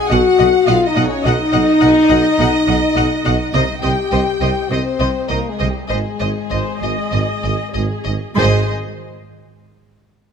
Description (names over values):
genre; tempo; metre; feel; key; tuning
cinematic; 96-106 BPM; 4/4; straight; Ab major; A4 = 439 Hz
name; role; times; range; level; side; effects
warm symphonic violin section; second line; 0.0-8.7 s; G4 to Ab5; -24 LUFS; left 2 dB; none
mellow French horn section; sustained chords; 0.0-8.6 s; G3 to Ab4; -17 LUFS; left 2 dB; none
rich studio violin section; melody; 0.1-8.7 s; Eb5 to F#5; -25 LUFS; left 3 dB; none
warm studio viola section; accompaniment; 0.1-8.7 s; Ab4 to D#5; -24 LUFS; equal; none
mellow tuba; bass; 0.1-8.6 s; Ab1 to C2; -24 LUFS; right 4 dB; none
rich symphonic cello section; bass; 0.1-8.7 s; Ab2 to C3; -23 LUFS; right 2 dB; none
rich symphonic double bass section; bass; 0.1-8.7 s; Ab1 to C2; -24 LUFS; right 3 dB; none
timpani; percussion; 8.4-8.7 s; Ab2; -27 LUFS; left 2 dB; none
room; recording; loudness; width
moderate scoring stage reverb, RT60 1.8 s; none; -14 LUFS; side -7 dB against mid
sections
0.0-8.4 A section; 8.4-10.3 B section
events
slowing down 2.4-8.4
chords
0.0 B; 3.5 Cm; 5.9 Ab